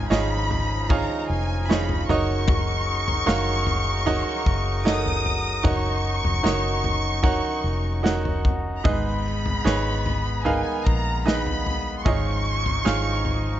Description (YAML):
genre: pop ballad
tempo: 76 BPM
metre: 4/4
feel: straight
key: F# major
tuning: A4 = 438 Hz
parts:
  - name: rich studio violin section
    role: second line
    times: 0.0-13.6 s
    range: G#5 to D#6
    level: -28 LUFS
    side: left 1 dB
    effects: none
  - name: bright baby grand piano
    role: accompaniment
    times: 0.0-13.6 s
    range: G#2 to F#5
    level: -27 LUFS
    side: right 5 dB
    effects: none
  - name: clear brass ensemble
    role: sustained chords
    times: 0.0-13.6 s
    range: E#3 to A#4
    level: -32 LUFS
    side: left 3 dB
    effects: none
  - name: vintage muted fingered electric bass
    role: bass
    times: 0.0-13.6 s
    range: E#1 to A#1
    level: -26 LUFS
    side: equal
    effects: none
  - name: downlifter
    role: sound effects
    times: 0.0-2.5 s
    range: none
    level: barely audible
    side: none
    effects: none
  - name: natural country drum kit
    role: drums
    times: 0.1-13.4 s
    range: kick drum, snare drum, toms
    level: -26 LUFS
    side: left 1 dB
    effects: none
room: small room ambience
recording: nothing above 7.7 kHz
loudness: -21 LUFS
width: side -12 dB against mid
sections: 0.0-13.6 A section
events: none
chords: 0.0 C#add9/G#; 2.1 F#6; 5.6 D#m7; 8.8 G#madd9; 12.1 C#add9/G#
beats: 0.11 0.90 1.69 | 2.48 3.27 4.06 4.85 | 5.64 6.44 7.23 8.04 | 8.85 9.65 10.46 11.26 | 12.06 12.86